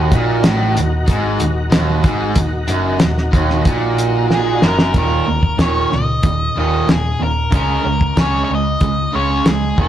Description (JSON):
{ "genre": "classic rock", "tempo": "93 BPM", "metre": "4/4", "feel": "straight", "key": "Eb minor", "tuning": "A4 = 440 Hz", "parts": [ { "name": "tonewheel organ", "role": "sustained chords", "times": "0.0-4.9 s", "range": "Eb4 to Gb5", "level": "-24 LUFS", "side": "left 2 dB", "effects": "chorus vibrato, fast rotary speaker" }, { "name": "overdriven semi-hollow guitar", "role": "riff", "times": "0.0-9.9 s", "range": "Eb2 to Db4", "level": "-19 LUFS", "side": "right 5 dB", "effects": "none" }, { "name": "tight distorted guitar", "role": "riff", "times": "0.0-9.9 s", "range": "Eb2 to Db4", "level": "-24 LUFS", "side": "left 5 dB", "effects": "distortion" }, { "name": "hollow-body short-scale picked electric bass", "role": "bass", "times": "0.0-9.9 s", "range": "Eb1 to Db2", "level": "-21 LUFS", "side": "equal", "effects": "none" }, { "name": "cloth-damped thuddy drum kit", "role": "drums", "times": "0.1-9.9 s", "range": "hi-hat, kick drum, snare drum", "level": "-16 LUFS", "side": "equal", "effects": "none" }, { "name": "octave-fuzz lead guitar", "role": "melody", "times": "4.3-9.9 s", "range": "Ab4 to Eb5", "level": "-20 LUFS", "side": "left 2 dB", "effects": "distortion" } ], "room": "moderate stone room reverb, RT60 1.1 s", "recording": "rough rehearsal-room recording, tube saturation, lossy compression artefacts", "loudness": "-13 LUFS", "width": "side -11 dB against mid", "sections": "0.0-4.9 A section; 4.9-9.9 B section", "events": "drum fill 4.3-4.9", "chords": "0.0 Ebm; 4.9 Eb5; 7.5 Db5", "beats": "0.45 1.09 1.73 | 2.37 3.02 3.66 4.30 | 4.95 5.59 6.23 6.88 | 7.52 8.16 8.81 9.45" }